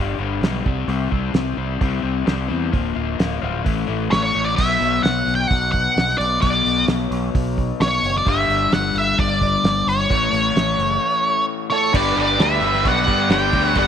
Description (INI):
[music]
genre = classic rock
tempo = 130 BPM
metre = 4/4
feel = straight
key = unclear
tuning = A4 = 440 Hz
[part]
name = crunchy overdriven guitar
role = riff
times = 0.0-13.9 s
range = G2 to G4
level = -23 LUFS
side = left 10 dB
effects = none
[part]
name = growling fingered electric bass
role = bass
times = 0.0-13.9 s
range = D1 to G2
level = -24 LUFS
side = right 2 dB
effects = overdrive
[part]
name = cloth-damped thuddy drum kit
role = drums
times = 0.4-13.9 s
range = crash cymbal, hi-hat, kick drum, snare drum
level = -22 LUFS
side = right 2 dB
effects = none
[part]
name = octave-fuzz lead guitar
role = melody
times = 4.1-13.9 s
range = C#5 to G5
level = -19 LUFS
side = right 1 dB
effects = wah, distortion
[part]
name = octave-fuzz lead guitar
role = second line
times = 11.7-13.9 s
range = A4 to D5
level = -24 LUFS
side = right 13 dB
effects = distortion
[part]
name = dark upright piano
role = accompaniment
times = 11.9-13.9 s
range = G4 to C#6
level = -29 LUFS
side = left 10 dB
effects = none
[part]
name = distorted electric guitar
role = riff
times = 11.9-13.9 s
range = G2 to G3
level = -23 LUFS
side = right 1 dB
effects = overdrive
[sound]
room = light reverb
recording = 1960s-style stereo with parts hard left and right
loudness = -17 LUFS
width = side -8 dB against mid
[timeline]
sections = 0.0-4.6 A section; 4.6-11.9 B section; 11.9-13.9 C section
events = none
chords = 0.0 G; 0.7 C5; 2.7 Bb/D; 3.7 A5; 4.6 Bm; 8.3 G5; 10.1 A; 11.9 G